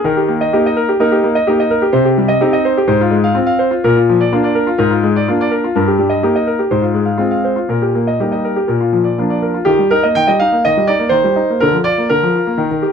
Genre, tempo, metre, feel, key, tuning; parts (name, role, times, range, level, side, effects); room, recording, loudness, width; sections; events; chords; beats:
classical-period piano sonatina; 125 BPM; 4/4; straight; Eb major; A4 = 441 Hz
bright concert grand piano; solo; 0.0-12.9 s; G2 to G5; -12 LUFS; equal
light reverb; close, detailed microphones; -12 LUFS; side -7 dB against mid
0.0-9.7 A section; 9.7-12.9 B section
0.0 Eb; 1.9 Cm; 2.9 Fm/Ab; 3.8 Bb; 4.8 Bb7/Ab; 5.7 Eb/G; 6.7 Fm/Ab; 7.7 Eb/Bb; 8.7 Bb; 9.7 Eb; 11.6 Bb/D
| 0.05 0.53 1.00 1.48 | 1.95 2.42 2.89 3.36 | 3.84 4.32 4.79 5.27 | 5.74 6.22 6.71 7.19 | 7.69 8.19 8.69 9.19 | 9.68 10.17 10.65 11.14 | 11.62 12.10 12.58